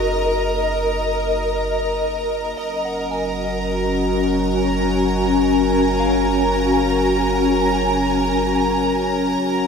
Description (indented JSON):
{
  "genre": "ambient",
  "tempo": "free time",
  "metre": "none",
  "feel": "none",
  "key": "Gb major",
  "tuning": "A4 = 440 Hz",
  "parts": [
    { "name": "ethereal airy pad", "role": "sustained chords", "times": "0.0-9.7 s", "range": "Db4 to Bb5", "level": "-19 LUFS", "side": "left 2 dB", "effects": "ensemble chorus, built-in reverb, tremolo, shimmer reverb" },
    { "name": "soft synth bell", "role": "arpeggios", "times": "0.0-9.4 s", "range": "Eb4 to Ab5", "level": "-32 LUFS", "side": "equal", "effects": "chorus, ping-pong delay, shimmer reverb" },
    { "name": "warm sub bass", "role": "bass", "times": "0.0-9.7 s", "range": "Gb1", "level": "-28 LUFS", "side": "right 1 dB", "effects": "none" },
    { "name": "clear studio violin section", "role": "texture", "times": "0.0-9.7 s", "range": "Bb4 to Bb5", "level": "-24 LUFS", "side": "right 1 dB", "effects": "shimmer reverb" },
    { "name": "overtone-sweeping drone", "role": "drone", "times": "2.8-9.7 s", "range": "Gb3 to Db4", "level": "-24 LUFS", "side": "equal", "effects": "chorus, built-in reverb" }
  ],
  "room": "wet lush hall reverb, RT60 3.1 s",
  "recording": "none",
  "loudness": "-17 LUFS",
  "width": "side -6 dB against mid",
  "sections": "0.0-9.7 A section",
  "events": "fade-out on synth bell 0.0-9.7",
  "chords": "0.0 Gbmaj7"
}